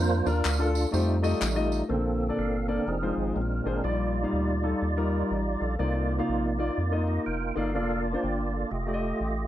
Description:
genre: uptempo gospel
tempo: 123 BPM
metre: 4/4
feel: swing 62% on 8ths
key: Bb major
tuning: A4 = 440 Hz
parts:
  - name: warm concert grand piano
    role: accompaniment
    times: 0.0-9.5 s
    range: Bb2 to Bb5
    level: -30 LUFS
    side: left 3 dB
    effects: none
  - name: tonewheel organ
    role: sustained chords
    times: 0.0-9.5 s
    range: Db3 to G5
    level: -30 LUFS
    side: right 3 dB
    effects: fast rotary speaker, chorus vibrato
  - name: round analog bass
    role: bass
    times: 0.0-9.5 s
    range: F1 to F2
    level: -29 LUFS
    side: equal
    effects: none
  - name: tambourine and handclaps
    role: percussion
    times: 0.3-1.8 s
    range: none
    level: -35 LUFS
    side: left 1 dB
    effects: none
room: little or no reverb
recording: dry, close 1970s-style studio recording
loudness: -25 LUFS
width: side -12 dB against mid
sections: 0.0-1.9 A section; 1.9-9.5 B section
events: tonewheel organ solo 0.0-1.9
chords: 0.0 Bb; 0.9 F9; 1.9 Bbmaj9; 2.9 Fm7; 3.4 Bb9; 3.8 Ebmaj9/Bb; 5.8 Cm11; 7.7 Bb/F; 8.7 F9

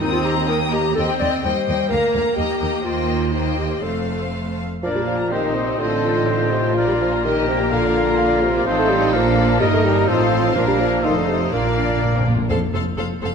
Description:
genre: quick classical-period movement for symphony orchestra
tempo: 126 BPM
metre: 2/4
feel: straight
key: Bb major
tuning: A4 = 440 Hz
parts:
  - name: rich studio violin section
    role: melody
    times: 0.0-13.3 s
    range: F4 to Eb6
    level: -29 LUFS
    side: left 6 dB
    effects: none
  - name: dark clarinet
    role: second line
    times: 0.0-12.2 s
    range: C4 to D5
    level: -26 LUFS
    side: left 1 dB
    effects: none
  - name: warm studio violin section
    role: second line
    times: 0.0-13.3 s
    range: F4 to Bb5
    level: -27 LUFS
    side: left 3 dB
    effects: none
  - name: rich studio viola section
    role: accompaniment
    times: 0.0-13.3 s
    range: G3 to A4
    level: -25 LUFS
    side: equal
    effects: none
  - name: rich studio double bass section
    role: bass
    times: 0.0-13.3 s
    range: F1 to Eb2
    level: -26 LUFS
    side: right 5 dB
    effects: none
  - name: warm studio cello section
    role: bass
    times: 0.0-13.3 s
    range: D2 to Bb2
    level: -27 LUFS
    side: right 2 dB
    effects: none
  - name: clear oboe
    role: second line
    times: 4.8-12.3 s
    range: A4 to C5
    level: -26 LUFS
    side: left 1 dB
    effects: none
  - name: concert flute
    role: second line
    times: 4.8-12.3 s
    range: C5 to F5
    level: -27 LUFS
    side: left 4 dB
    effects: none
  - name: dark bassoon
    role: accompaniment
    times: 4.8-12.0 s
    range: Bb2 to A3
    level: -21 LUFS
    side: right 2 dB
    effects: none
  - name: warm French horn section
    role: sustained chords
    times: 4.8-12.4 s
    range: A3 to G4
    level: -26 LUFS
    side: left 4 dB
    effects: none
  - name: timpani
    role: percussion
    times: 7.7-8.4, 10.6-13.2 s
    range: F2 to Bb2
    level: -26 LUFS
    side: left 1 dB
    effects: none
room: moderate scoring stage reverb, RT60 1.7 s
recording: minimal, uncompressed stereo recording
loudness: -17 LUFS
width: side -6 dB against mid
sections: 0.0-4.8 A section; 4.8-12.5 B section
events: timpani fill 11.5-12.5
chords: 0.0 Eb; 1.0 Cm/Eb; 1.9 Bb/D; 2.4 Eb; 3.8 F; 4.8 Bb; 5.3 Cm7/Bb; 5.8 F7/A; 6.8 Bb; 7.2 Eb/Bb; 7.7 Bb; 8.7 F7/A; 9.1 Bb; 9.6 Eb/G; 10.1 F7/A; 10.6 Bb; 11.0 F7; 11.5 Bb; 12.5 F

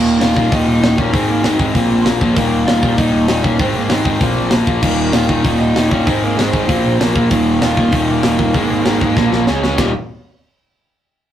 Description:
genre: punk rock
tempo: 194 BPM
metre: 4/4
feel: straight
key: unclear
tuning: A4 = 440 Hz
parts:
  - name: dark smooth lead guitar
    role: melody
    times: 0.0-9.9 s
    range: Bb3 to F5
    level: -21 LUFS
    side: right 4 dB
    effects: overdrive
  - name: distorted electric guitar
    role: riff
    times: 0.0-9.9 s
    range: Eb2 to Db4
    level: -15 LUFS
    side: left 1 dB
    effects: distortion
  - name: fuzz picked electric bass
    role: bass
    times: 0.0-9.9 s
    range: Eb1 to Db2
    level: -22 LUFS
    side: equal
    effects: overdrive
  - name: tight metal drum kit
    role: drums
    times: 0.2-9.9 s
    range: crash cymbal, hi-hat, kick drum, ride cymbal, snare drum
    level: -18 LUFS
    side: equal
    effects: none
  - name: overdriven semi-hollow guitar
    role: riff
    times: 4.8-9.9 s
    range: Eb2 to Db4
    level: -24 LUFS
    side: right 4 dB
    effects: none
room: moderate small room reverb, RT60 0.5 s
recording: rough rehearsal-room recording, tube saturation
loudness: -12 LUFS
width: side -10 dB against mid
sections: 0.0-9.8 A section; 9.8-11.0 B section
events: drum fill 9.2-9.8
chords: 0.0 Eb5; 1.1 Ab; 1.7 Bb5; 2.4 Eb5; 3.6 Ab; 4.2 Bb5; 4.8 Eb5; 6.1 Ab; 6.7 Bb5; 7.3 Eb5; 8.5 Ab5; 9.2 Bb5; 9.5 Db5; 9.8 Eb5

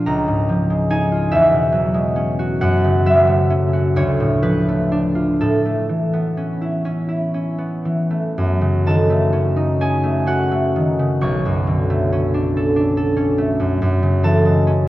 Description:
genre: classical, solo harp piece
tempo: 37-49 BPM (dotted quarters)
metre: 6/8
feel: rubato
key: F# minor from 8.4 s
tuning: A4 = 440 Hz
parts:
  - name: concert harp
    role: solo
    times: 0.0-14.9 s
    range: B1 to C#6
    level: -15 LUFS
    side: equal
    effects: none
room: wet church reverb, RT60 2.8 s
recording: worn, warbling old tape, cassette tape, warbly pitch drift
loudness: -15 LUFS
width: side -16 dB against mid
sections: 0.0-8.4 A section; 8.4-14.9 B section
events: none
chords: 0.1 C#69; 1.3 E69; 2.6 F#m7; 4.0 Dm6; 5.4 Aadd9; 8.4 F#m6; 11.2 Bm9; 13.8 F#m9

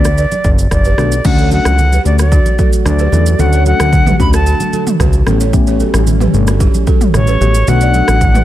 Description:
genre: afrobeats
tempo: 112 BPM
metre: 4/4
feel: straight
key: D major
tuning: A4 = 440 Hz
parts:
  - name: bright reedy jazz flute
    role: melody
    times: 0.0-8.4 s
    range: C#5 to B5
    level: -17 LUFS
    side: left 1 dB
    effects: tape echo
  - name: mellow tine electric piano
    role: accompaniment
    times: 0.0-8.2 s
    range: A3 to G4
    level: -20 LUFS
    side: left 8 dB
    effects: phaser
  - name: fat analog bass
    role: bass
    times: 0.0-8.4 s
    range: F#1 to E2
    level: -12 LUFS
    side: equal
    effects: none
  - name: deep house drum kit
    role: drums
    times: 0.0-8.4 s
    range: crash cymbal, kick drum, rim click, shaker, toms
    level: -14 LUFS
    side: equal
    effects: overdrive
  - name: balafon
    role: riff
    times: 0.2-8.4 s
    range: D4 to D5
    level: -22 LUFS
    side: right 10 dB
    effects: tape echo
  - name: congas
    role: percussion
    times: 0.3-8.4 s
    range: none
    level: -22 LUFS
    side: right 2 dB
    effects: none
  - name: warm analog pad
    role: sustained chords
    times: 1.2-8.4 s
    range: D3 to F#4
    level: -23 LUFS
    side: left 1 dB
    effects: chorus
room: little or no reverb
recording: none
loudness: -9 LUFS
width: side -13 dB against mid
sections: 0.0-1.2 A section; 1.2-8.4 B section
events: none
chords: 0.0 Bm7; 1.2 Dmaj7; 5.3 A9; 7.7 Bm7

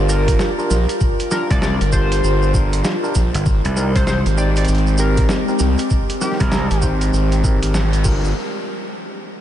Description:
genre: glitch hop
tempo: 98 BPM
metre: 4/4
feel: swing 62% on 16ths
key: G phrygian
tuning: A4 = 440 Hz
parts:
  - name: warbly tape-like pad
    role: sustained chords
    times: 0.0-8.3 s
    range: G3 to Bb4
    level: -24 LUFS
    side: equal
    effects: chorus, built-in reverb, phaser, sidechain pumping
  - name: overdriven tine electric piano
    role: stabs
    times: 0.0-8.3 s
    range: C4 to C5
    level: -25 LUFS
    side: equal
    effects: sidechain pumping, ping-pong delay
  - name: gritty driven synth bass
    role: bass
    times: 0.0-8.3 s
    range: G1 to C2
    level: -17 LUFS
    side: equal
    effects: distortion, tube saturation
  - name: sync lead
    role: melody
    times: 0.1-6.8 s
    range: G4 to D5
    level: -27 LUFS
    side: equal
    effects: chorus, cassette tape, ping-pong delay
  - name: cabasa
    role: percussion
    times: 0.1-8.3 s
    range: none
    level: -31 LUFS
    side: right 3 dB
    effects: none
  - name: boom bap sampler-style drum kit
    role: drums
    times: 0.3-8.2 s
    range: crash cymbal, hi-hat, snare drum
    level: -27 LUFS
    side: equal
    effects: small room ambience
  - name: electronic kick drum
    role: drums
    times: 0.3-8.2 s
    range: none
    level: -19 LUFS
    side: equal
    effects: small room ambience
  - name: gritty slap bass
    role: bass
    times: 1.5-6.7 s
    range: G1 to C2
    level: -19 LUFS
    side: equal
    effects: overdrive
room: light reverb, digital ambience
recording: nothing above 10.6 kHz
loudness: -15 LUFS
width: side -11 dB against mid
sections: 0.0-8.4 A section; 8.4-9.4 B section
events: drop 0.0-8.4; band accent 7.7-8.1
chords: 0.0 Gm7; 3.5 Abmaj7; 8.1 Gm7; 8.4 N.C.

